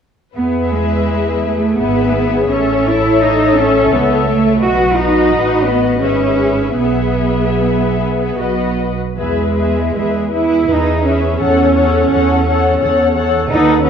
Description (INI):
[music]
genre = classical, slow romantic movement for string orchestra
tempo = 74-89 BPM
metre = 3/4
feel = rubato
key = E major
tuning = A4 = 439 Hz
[part]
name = muted symphonic violin section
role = second line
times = 0.3-13.9 s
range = B4 to C#5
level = -20 LUFS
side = left 6 dB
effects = none
[part]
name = muted studio violin section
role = melody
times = 0.4-13.9 s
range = D#5 to F#5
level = -22 LUFS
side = left 7 dB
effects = none
[part]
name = muted studio viola section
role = accompaniment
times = 0.4-13.9 s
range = F#4 to A4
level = -20 LUFS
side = left 2 dB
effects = none
[part]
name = muted studio cello section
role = bass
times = 0.4-13.9 s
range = G#3 to F#4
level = -16 LUFS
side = right 3 dB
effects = none
[part]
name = muted studio double bass section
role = bass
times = 0.4-13.9 s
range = G#1 to E2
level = -19 LUFS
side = right 4 dB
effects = none
[sound]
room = moderate concert hall reverb, RT60 1.8 s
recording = worn, warbling old tape, cassette tape, warbly pitch drift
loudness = -12 LUFS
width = side -7 dB against mid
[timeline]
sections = 0.4-13.9 A section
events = none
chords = 0.4 E; 2.5 A; 4.6 B; 6.0 E/G#; 6.8 E/B; 8.4 B; 9.2 E; 11.4 F#m7/E